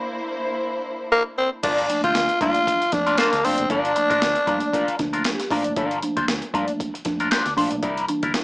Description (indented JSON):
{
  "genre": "funk",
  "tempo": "116 BPM",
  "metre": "4/4",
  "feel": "swing 56% on 16ths",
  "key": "G dorian",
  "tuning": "A4 = 441 Hz",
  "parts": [
    { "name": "warm studio string section", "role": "sustained chords", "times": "0.0-1.6 s", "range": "Bb3 to C5", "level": "-27 LUFS", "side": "equal", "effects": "none" },
    { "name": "growling tenor saxophone", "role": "melody", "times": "1.1-5.2 s", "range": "Bb3 to F4", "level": "-20 LUFS", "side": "equal", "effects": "none" },
    { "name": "electric guitar at the edge of break-up", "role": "accompaniment", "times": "1.6-8.4 s", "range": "D4 to C5", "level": "-24 LUFS", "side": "left 1 dB", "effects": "wah" },
    { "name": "vintage muted fingered electric bass", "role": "bass", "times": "1.6-8.4 s", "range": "F1 to G2", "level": "-34 LUFS", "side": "equal", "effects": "none" },
    { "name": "breakbeat sampler-style drum kit", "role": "drums", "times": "1.6-8.4 s", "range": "crash cymbal, hi-hat, kick drum, snare drum", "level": "-27 LUFS", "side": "equal", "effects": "overdrive" },
    { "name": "mellow tine electric piano", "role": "stabs", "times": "1.9-8.4 s", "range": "E3 to D5", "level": "-27 LUFS", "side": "right 1 dB", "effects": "ensemble chorus" }
  ],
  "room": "light reverb",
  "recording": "small speaker sound",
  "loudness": "-19 LUFS",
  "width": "side -24 dB against mid",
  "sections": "0.0-1.6 A section; 1.6-8.4 B section",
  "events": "tine electric piano fill 5.0-5.8",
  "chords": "0.0 C9; 1.6 Gm7; 7.8 C9"
}